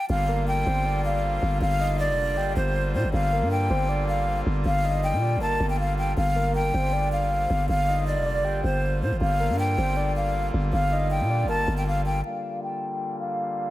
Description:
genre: hip hop.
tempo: 158 BPM.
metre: 4/4.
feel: half-time.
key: G minor.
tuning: A4 = 439 Hz.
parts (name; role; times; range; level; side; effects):
breathy hollow jazz flute; melody; 0.0-13.7 s; C5 to A5; -26 LUFS; left 1 dB; low-pass filter.
accordion; sustained chords; 0.1-13.7 s; D3 to F4; -33 LUFS; left 1 dB; low-pass filter.
growling 808-style bass; bass; 0.1-12.2 s; F1 to Bb2; -25 LUFS; equal; none.
soft octave-layered synth lead; second line; 0.3-11.8 s; Bb4 to G5; -32 LUFS; right 1 dB; chorus, tape echo.
room: light reverb, studio reverb.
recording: none.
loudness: -22 LUFS.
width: side -16 dB against mid.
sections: 0.1-12.2 A section; 12.2-13.7 B section.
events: filter sweep 12.2-13.7.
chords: 0.1 Gm7.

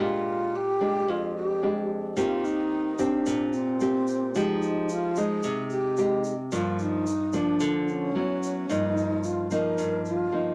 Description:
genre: bossa nova.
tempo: 110 BPM.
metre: 4/4.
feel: straight.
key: Eb major.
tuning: A4 = 440 Hz.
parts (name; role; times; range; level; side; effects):
breathy mellow wooden-headed alto flute; melody; 0.0-10.5 s; C4 to Bb4; -30 LUFS; equal; none.
nylon-string guitar; accompaniment; 0.0-10.5 s; F2 to G4; -30 LUFS; equal; none.
egg shaker; percussion; 2.2-10.3 s; none; -47 LUFS; equal; none.
room: moderate club reverb, RT60 0.6 s.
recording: none.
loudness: -27 LUFS.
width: mono.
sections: 0.0-10.5 A section.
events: none.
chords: 0.0 Bb6; 2.2 Eb6; 4.3 Fm9; 6.5 Gm7; 8.1 Dbm7; 8.7 Ebadd9/G.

